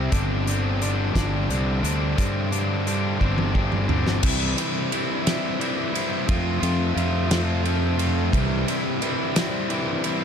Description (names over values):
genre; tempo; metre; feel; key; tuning
indie rock; 58 BPM (dotted quarters); 6/8; straight; C major; A4 = 440 Hz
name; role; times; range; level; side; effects
distorted electric guitar; riff; 0.0-10.2 s; C3 to F4; -24 LUFS; left 1 dB; distortion
fuzz fingered electric bass; bass; 0.0-8.6 s; G1 to G2; -24 LUFS; equal; overdrive
loose indie drum kit; drums; 0.1-10.2 s; crash cymbal, hi-hat, kick drum, ride cymbal, snare drum, toms; -26 LUFS; equal; none
room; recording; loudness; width
small room ambience; none; -21 LUFS; side -7 dB against mid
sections
0.0-4.2 A section; 4.2-10.2 B section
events
drum fill 3.2-4.2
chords
0.1 Gsus4; 4.2 C; 6.3 F; 8.3 C